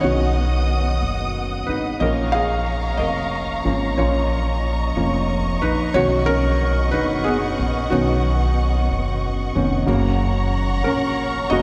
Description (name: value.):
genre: six-eight pop ballad.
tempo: 61 BPM (dotted quarters).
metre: 6/8.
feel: straight.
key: unclear.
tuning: A4 = 440 Hz.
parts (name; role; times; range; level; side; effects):
felt-muted upright piano; accompaniment; 0.0-11.6 s; A#2 to E#5; -24 LUFS; equal; none.
warm studio string section; sustained chords; 0.0-11.6 s; B3 to D#6; -28 LUFS; equal; none.
upright bass; bass; 0.0-11.6 s; E#1 to B1; -24 LUFS; equal; none.
room: wet cathedral reverb, RT60 7.1 s.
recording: recorded in a church or concert hall.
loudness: -20 LUFS.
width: mono.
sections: 0.0-9.9 A section; 9.9-11.6 B section.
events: felt piano solo 0.0-9.9, 9.9-11.6.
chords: 0.0 Badd9; 2.0 A#m; 5.9 Badd9; 9.9 F#.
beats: | 0.04 1.03 | 2.01 3.00 | 3.98 4.96 | 5.95 6.93 | 7.91 8.89 | 9.88 10.86.